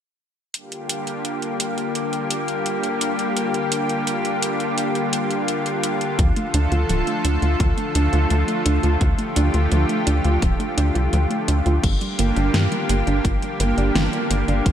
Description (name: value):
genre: synthwave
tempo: 85 BPM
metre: 4/4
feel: straight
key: G minor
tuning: A4 = 440 Hz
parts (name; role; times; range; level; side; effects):
- lush unison pad; sustained chords; 0.5-14.7 s; D3 to A4; -22 LUFS; left 1 dB; chorus, sidechain pumping
- pop drum kit; drums; 0.5-14.7 s; crash cymbal, hi-hat, snare drum; -26 LUFS; equal; gated reverb
- warbly dusty pluck; arpeggios; 6.2-14.7 s; F3 to F4; -26 LUFS; right 3 dB; chorus, tape echo
- tight sequencer bass; bass; 6.2-14.7 s; D1 to G2; -19 LUFS; equal; sidechain pumping
- electronic kick drum; drums; 6.2-14.7 s; none; -20 LUFS; equal; none
room: light reverb, digital ambience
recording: none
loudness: -18 LUFS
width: side -9 dB against mid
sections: 0.5-11.8 A section; 11.8-14.7 B section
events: none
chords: 0.5 Gm7; 6.2 Dm; 11.8 Gm7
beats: | 0.54 1.25 1.95 2.66 | 3.37 4.07 4.78 5.48 | 6.19 6.89 7.60 8.31 | 9.01 9.72 10.42 11.13 | 11.84 12.54 13.25 13.95 | 14.66